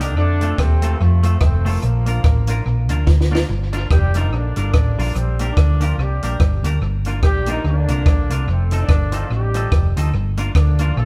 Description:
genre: ska.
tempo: 144 BPM.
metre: 4/4.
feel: swing 58% on 8ths.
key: unclear.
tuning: A4 = 440 Hz.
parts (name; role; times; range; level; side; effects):
mellow horn section; melody; 0.0-11.1 s; C3 to A4; -28 LUFS; equal; none.
semi-hollow electric guitar; accompaniment; 0.0-10.9 s; F3 to Bb4; -31 LUFS; equal; none.
hollow-body short-scale fingered electric bass; bass; 0.0-11.1 s; F1 to F2; -20 LUFS; equal; none.
compact cocktail drum kit; drums; 0.0-10.9 s; hi-hat, kick drum, rim click, snare drum; -20 LUFS; equal; none.
room: moderate stone room reverb, RT60 1.2 s.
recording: band playing live in one room.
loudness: -18 LUFS.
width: mono.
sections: 0.0-3.5 A section; 3.5-11.1 B section.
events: drum fill 3.1-3.5.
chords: 0.2 F; 1.8 Bb; 3.5 Gm7; 5.2 Bb6; 6.8 Gm7; 8.5 F7; 10.1 Gm7.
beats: | 0.17 0.58 1.00 1.41 | 1.83 2.24 2.66 3.07 | 3.49 3.90 4.32 4.74 | 5.15 5.57 5.98 6.40 | 6.81 7.23 7.64 8.06 | 8.47 8.89 9.30 9.72 | 10.13 10.55 10.96.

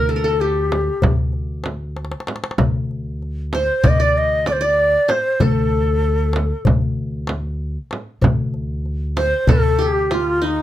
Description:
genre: Turkish makam ensemble.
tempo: 192 BPM (eighths).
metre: 9/8.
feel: straight.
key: D makam kurdi.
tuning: A4 = 441 Hz.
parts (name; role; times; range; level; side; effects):
breathy bright low ney; melody; 0.0-10.6 s; Eb4 to Eb5; -18 LUFS; equal; none.
qanun; second line; 0.0-10.6 s; Eb4 to D5; -25 LUFS; right 1 dB; slapback echo.
upright bass; bass; 0.0-10.6 s; D2; -21 LUFS; equal; none.
darbuka; percussion; 0.7-10.3 s; none; -22 LUFS; left 3 dB; none.
frame drum; percussion; 0.7-10.3 s; none; -22 LUFS; right 2 dB; none.
room: light reverb.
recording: close, detailed microphones.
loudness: -16 LUFS.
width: side -13 dB against mid.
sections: 0.0-10.6 A section.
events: drum fill 2.0-2.6.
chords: none.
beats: 0.10 0.41 0.72 1.03 1.35 1.66 1.97 2.29 | 2.60 2.91 3.22 3.54 3.85 4.16 4.47 4.79 5.10 | 5.41 5.73 6.04 6.35 6.67 6.98 7.29 7.60 7.92 | 8.23 8.54 8.85 9.16 9.48 9.79 10.10 10.41.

